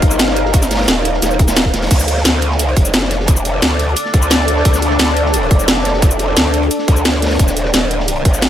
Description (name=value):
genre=dark technical drum and bass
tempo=175 BPM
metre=4/4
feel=straight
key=D phrygian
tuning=A4 = 440 Hz
part: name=deep dark ambient pad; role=sustained chords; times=0.0-8.5 s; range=D4 to F5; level=-19 LUFS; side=left 1 dB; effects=chorus, built-in reverb, sidechain pumping
part: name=growl bass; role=bass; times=0.0-8.5 s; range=Eb1 to D2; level=-16 LUFS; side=equal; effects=chorus, tube saturation
part: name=crunchy breakbeat drum kit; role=drums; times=0.0-8.5 s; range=hi-hat, snare drum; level=-24 LUFS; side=equal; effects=high-pass filter on hats, high-pass filter on snare, high-pass filter on room
part: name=drum and bass drum kit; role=drums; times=0.0-8.5 s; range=crash cymbal, hi-hat, shaker, snare drum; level=-16 LUFS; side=equal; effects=overdrive
part: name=electronic kick drum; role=drums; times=0.0-8.3 s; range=none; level=-12 LUFS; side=equal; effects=none
room=light reverb, digital ambience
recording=none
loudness=-11 LUFS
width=side -11 dB against mid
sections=0.0-8.5 A section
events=none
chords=0.0 Eb; 1.9 Dm; 7.4 Eb